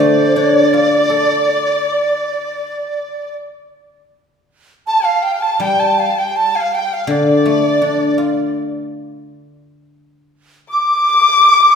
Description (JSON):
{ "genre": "chinese traditional, Chinese chamber ensemble", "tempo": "82 BPM", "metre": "4/4", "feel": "rubato", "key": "D yu mode", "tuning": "A4 = 440 Hz", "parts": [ { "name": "hollow large dizi", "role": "melody", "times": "0.0-11.8 s", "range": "D5 to D6", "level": "-16 LUFS", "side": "equal", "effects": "none" }, { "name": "bright reedy bansuri", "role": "second line", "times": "0.0-11.7 s", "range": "D5 to D6", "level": "-20 LUFS", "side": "right 5 dB", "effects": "none" }, { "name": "warm erhu", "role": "second line", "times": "0.0-11.8 s", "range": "D5 to D6", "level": "-18 LUFS", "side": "left 4 dB", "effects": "none" }, { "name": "guzheng", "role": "accompaniment", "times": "0.0-9.6 s", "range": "D3 to A4", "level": "-16 LUFS", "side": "left 2 dB", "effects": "none" } ], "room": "wet recital hall reverb, RT60 1.6 s", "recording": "recorded in a church or concert hall", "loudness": "-12 LUFS", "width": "side -7 dB against mid", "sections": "0.0-4.1 A section; 4.1-11.8 B section", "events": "none", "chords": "none" }